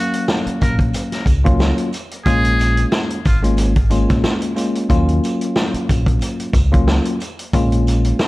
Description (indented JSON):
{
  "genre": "hip hop, boom-bap hip-hop",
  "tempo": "91 BPM",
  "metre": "4/4",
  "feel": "swing 54% on 16ths",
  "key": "Eb minor",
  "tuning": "A4 = 439 Hz",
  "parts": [
    { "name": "trumpet with metal mute", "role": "melody", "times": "0.0-3.4 s", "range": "F4 to Bb4", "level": "-24 LUFS", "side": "equal", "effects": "high-pass filter, low-pass filter, ping-pong delay" },
    { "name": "bell-like tine electric piano", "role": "accompaniment", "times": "0.0-8.3 s", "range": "Gb3 to F5", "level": "-20 LUFS", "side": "left 1 dB", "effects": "medium stereo tremolo, high-pass filter, low-pass filter" },
    { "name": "vintage drum kit", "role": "drums", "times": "0.1-8.3 s", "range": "hi-hat, kick drum, snare drum", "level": "-18 LUFS", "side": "equal", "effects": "none" },
    { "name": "sleigh bells", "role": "percussion", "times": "0.3-8.3 s", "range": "none", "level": "-40 LUFS", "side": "right 6 dB", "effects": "none" },
    { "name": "deep dub fingered electric bass", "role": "bass", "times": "0.5-8.1 s", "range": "Ab1 to Eb2", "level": "-17 LUFS", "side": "equal", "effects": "none" }
  ],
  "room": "small room ambience",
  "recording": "dark, warm production, vinyl crackle",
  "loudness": "-14 LUFS",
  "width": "side -20 dB against mid",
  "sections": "0.0-8.3 A section",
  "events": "none",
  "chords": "0.0 Ebm7 (rootless); 2.3 Bbm7; 4.9 Ebm7 (rootless); 7.5 Bbm7"
}